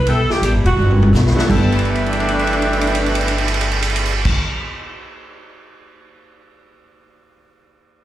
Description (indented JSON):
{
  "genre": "jazz, big band swing",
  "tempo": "169 BPM",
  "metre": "4/4",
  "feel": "swing 63% on 8ths",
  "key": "G major",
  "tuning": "A4 = 440 Hz",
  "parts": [
    { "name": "mellow saxophone section", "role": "melody", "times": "0.0-4.3 s", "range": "B2 to A4", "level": "-20 LUFS", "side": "equal", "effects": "slapback echo" },
    { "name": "upright bass", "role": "bass", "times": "0.0-4.3 s", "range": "E1 to B1", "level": "-18 LUFS", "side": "equal", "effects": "none" },
    { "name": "picked acoustic archtop guitar", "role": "accompaniment", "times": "0.1-4.9 s", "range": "G3 to A4", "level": "-27 LUFS", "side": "left 4 dB", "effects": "slapback echo" },
    { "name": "warm trumpet section", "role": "stabs", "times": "0.1-4.3 s", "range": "A4 to G5", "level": "-25 LUFS", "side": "right 1 dB", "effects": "slapback echo" },
    { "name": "swinging big-band drum kit", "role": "drums", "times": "0.1-5.8 s", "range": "crash cymbal, hi-hat, kick drum, ride cymbal, snare drum, toms", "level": "-21 LUFS", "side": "right 1 dB", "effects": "none" },
    { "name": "clear grand piano", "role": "accompaniment", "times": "1.3-4.3 s", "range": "G2 to A4", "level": "-25 LUFS", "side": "right 4 dB", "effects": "slapback echo" }
  ],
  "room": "light reverb",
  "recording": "live gig heard through the venue's PA, club reverb",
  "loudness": "-14 LUFS",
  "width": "side -13 dB against mid",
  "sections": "0.0-1.5 A section; 1.5-4.3 B section",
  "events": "drum fill 0.8-1.5, 1.7-4.2",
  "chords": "0.0 G69"
}